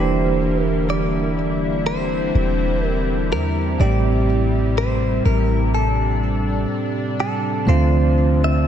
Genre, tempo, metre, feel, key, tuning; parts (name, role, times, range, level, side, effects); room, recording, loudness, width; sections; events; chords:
R&B; 62 BPM; 4/4; swing 58% on 16ths; A4 = 435 Hz
direct-recorded clean electric guitar; melody; 0.0-8.7 s; A4 to E5; -24 LUFS; equal; phaser, ping-pong delay
bell-like tine electric piano; accompaniment; 0.0-8.7 s; A2 to G4; -22 LUFS; right 2 dB; medium stereo tremolo
lush unison pad; sustained chords; 0.0-8.7 s; C3 to E4; -24 LUFS; equal; chorus
warm 808-style bass; bass; 0.0-8.7 s; E1 to E2; -21 LUFS; equal
light reverb; -17 LUFS; side -9 dB against mid
0.0-8.7 A section
0.0 Em7b5; 3.8 Am7; 7.7 Dm7